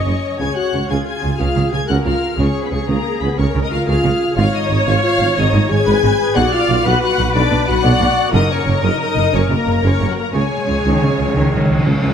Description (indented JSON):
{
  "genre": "cinematic",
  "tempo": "121 BPM (dotted quarters)",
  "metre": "12/8",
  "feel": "straight",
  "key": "unclear",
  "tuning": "A4 = 440 Hz",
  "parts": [
    { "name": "rich symphonic violin section", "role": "melody", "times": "0.0-11.8 s", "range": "F#5 to G#6", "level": "-25 LUFS", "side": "left 5 dB", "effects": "none" },
    { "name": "rich symphonic violin section", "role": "second line", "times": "0.0-11.8 s", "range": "F#4 to G#5", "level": "-25 LUFS", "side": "left 5 dB", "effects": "none" },
    { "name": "rich symphonic viola section", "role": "accompaniment", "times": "0.0-12.1 s", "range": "E#4 to D#5", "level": "-22 LUFS", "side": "equal", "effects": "none" },
    { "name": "mellow French horn section", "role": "sustained chords", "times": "0.0-11.8 s", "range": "F#3 to G#4", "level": "-21 LUFS", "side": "left 4 dB", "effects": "none" },
    { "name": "mellow tuba", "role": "bass", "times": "0.1-12.1 s", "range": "F#1 to C#2", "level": "-22 LUFS", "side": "right 3 dB", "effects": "none" },
    { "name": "rich symphonic double bass section", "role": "bass", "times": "0.1-12.1 s", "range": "F#1 to C#2", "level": "-22 LUFS", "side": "right 2 dB", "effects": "none" },
    { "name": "warm symphonic cello section", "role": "bass", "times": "0.1-12.1 s", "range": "F#2 to D#3", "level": "-21 LUFS", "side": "right 2 dB", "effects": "none" },
    { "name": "timpani", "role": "percussion", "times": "8.3-12.1 s", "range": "F#2 to C#3", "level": "-22 LUFS", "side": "equal", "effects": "none" }
  ],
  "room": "moderate scoring stage reverb, RT60 1.7 s",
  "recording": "none",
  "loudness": "-14 LUFS",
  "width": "side -8 dB against mid",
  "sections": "0.0-12.1 A section",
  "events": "timpani fill 10.3-12.1",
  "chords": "0.4 C#; 4.4 G#m; 6.4 Bm; 8.3 F#; 10.3 C#5",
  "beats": "| 0.40 0.90 1.40 1.89 | 2.39 2.89 3.38 3.88 | 4.38 4.87 5.37 5.87 | 6.36 6.86 7.35 7.85 | 8.34 8.84 9.34 9.84 | 10.35 10.86 11.37 11.87"
}